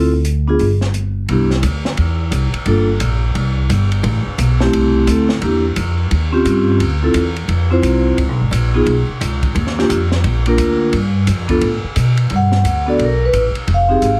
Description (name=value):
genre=jazz, small-group swing and bop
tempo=174 BPM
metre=4/4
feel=swing 63% on 8ths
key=C major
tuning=A4 = 440 Hz
part: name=vibraphone with medium mallets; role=accompaniment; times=0.0-14.2 s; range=A3 to F#5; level=-18 LUFS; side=equal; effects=none
part: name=upright bass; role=bass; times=0.0-14.2 s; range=F1 to B2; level=-18 LUFS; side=equal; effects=none
part: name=open jazz drum kit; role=drums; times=0.2-14.1 s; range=hi-hat, kick drum, ride cymbal, snare drum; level=-26 LUFS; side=equal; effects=none
room=little or no reverb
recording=heavily compressed radio sound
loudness=-16 LUFS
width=mono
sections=0.0-1.3 A section; 1.3-12.3 B section; 12.3-14.2 C section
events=none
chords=0.0 Dm7; 0.6 N.C.; 1.3 Cmaj9; 2.7 Gm7; 3.4 C5; 4.0 Am11; 5.4 Em7b5; 6.1 Eb13; 6.8 Dm9; 8.2 Db7(no3); 9.5 Ebmaj7sus2; 10.9 G9; 12.3 Gmaj9; 13.7 Fm7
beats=0.25 0.59 0.94 | 1.28 1.63 1.97 2.32 | 2.66 3.01 3.35 3.69 | 4.04 4.38 4.73 5.07 | 5.42 5.76 6.11 6.45 | 6.79 7.14 7.48 7.83 | 8.17 8.52 8.86 9.20 | 9.55 9.89 10.24 10.58 | 10.92 11.27 11.61 11.96 | 12.30 12.64 12.99 13.33 | 13.68 14.02